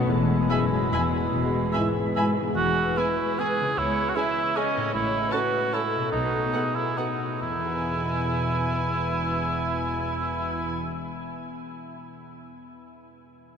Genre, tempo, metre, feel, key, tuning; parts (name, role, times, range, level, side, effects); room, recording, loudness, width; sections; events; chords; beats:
classical, orchestral ballroom waltz; 132-166 BPM; 3/4; rubato; E major; A4 = 443 Hz
mellow clarinet; second line; 0.0-2.4 s; E4 to F#4; -34 LUFS; right 1 dB
rich studio viola section; accompaniment; 0.0-10.8 s; G#3 to A4; -35 LUFS; right 1 dB
concert harp; arpeggios; 0.0-11.6 s; A2 to B5; -32 LUFS; left 4 dB
rich studio double bass section; bass; 0.0-10.8 s; E1 to C#2; -34 LUFS; left 1 dB
warm studio cello section; bass; 0.0-10.8 s; C#2 to B2; -32 LUFS; equal
warm studio violin section; melody; 0.5-10.8 s; F#5 to B5; -38 LUFS; left 1 dB
dark symphonic violin section; second line; 0.5-10.8 s; E4 to G#5; -33 LUFS; left 2 dB
mellow hollow small flute group; second line; 0.5-2.2 s; G#5; -38 LUFS; equal
warm cor anglais; second line; 0.5-10.8 s; C#4 to E5; -28 LUFS; right 4 dB
dark French horn section; sustained chords; 0.5-2.3 s; G#3 to E4; -37 LUFS; left 1 dB
wet huge ambient reverb, RT60 7.9 s; in a vast, echoing space; -23 LUFS; side -7 dB against mid
0.0-2.6 A section; 2.6-7.4 B section; 7.4-10.0 C section
slowing down 4.4-7.4
0.1 E; 3.8 C#m; 4.9 A; 6.1 B7; 7.4 E
| 0.09 0.50 0.93 | 1.33 1.74 2.16 | 2.56 2.97 3.39 | 3.77 4.16 4.56 | 4.94 5.32 5.73 | 6.12 6.53 6.98 | 7.42 7.84 8.29 | 8.71 9.13 9.58